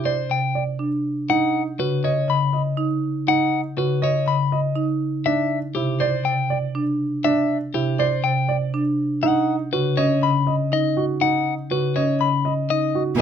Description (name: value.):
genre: classical, minimalist pattern music.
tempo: 121 BPM.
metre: 4/4.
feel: straight.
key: unclear.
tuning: A4 = 442 Hz.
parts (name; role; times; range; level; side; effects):
clean electric guitar; melody; 0.0-13.0 s; G4 to B5; -23 LUFS; left 9 dB; none.
marimba with medium hard mallets; accompaniment; 0.0-13.0 s; C3 to D#4; -23 LUFS; equal; none.
dark grand piano; arpeggios; 0.0-13.2 s; D4 to D#5; -24 LUFS; right 6 dB; none.
room: light reverb.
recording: close, detailed microphones.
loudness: -19 LUFS.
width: side -8 dB against mid.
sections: 0.0-13.2 A section.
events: none.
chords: 0.0 Gsus4; 1.3 B; 5.3 Gsus4; 9.2 B.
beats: 0.30 0.80 | 1.30 1.79 2.29 2.78 | 3.28 3.77 4.27 4.77 | 5.26 5.76 6.25 6.75 | 7.25 7.74 8.24 8.73 | 9.23 9.73 10.22 10.72 | 11.21 11.71 12.21 12.70 | 13.20.